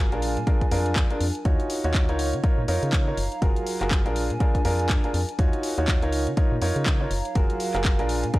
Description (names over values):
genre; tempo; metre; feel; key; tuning
piano house; 122 BPM; 4/4; swing 59% on 16ths; unclear; A4 = 441 Hz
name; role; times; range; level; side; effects
clear baby grand piano; riff; 0.0-8.4 s; D4 to Db5; -27 LUFS; right 1 dB; vintage 12-bit sampler grit, sidechain pumping
organ-like FM bass; bass; 0.0-8.3 s; Gb1 to Db3; -27 LUFS; equal; sidechain pumping
warbly tape-like pad; texture; 0.1-8.4 s; Gb3 to Bb5; -34 LUFS; right 1 dB; chorus, built-in reverb, sidechain pumping
house drum kit; drums; 0.1-8.4 s; handclaps, hi-hat; -31 LUFS; left 1 dB; overdrive, studio reverb
electronic kick drum; drums; 0.5-8.4 s; none; -22 LUFS; equal; overdrive, studio reverb
room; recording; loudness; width
digital ambience; dry, gritty hardware recording, transformer saturation, cassette tape; -21 LUFS; side -18 dB against mid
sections
0.0-8.4 A section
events
none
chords
0.2 Bb7; 1.5 Ebm9; 2.2 Db69; 3.2 Gbmaj9; 4.2 Bb7; 5.4 Ebm9; 6.1 Db69; 7.1 Gbmaj9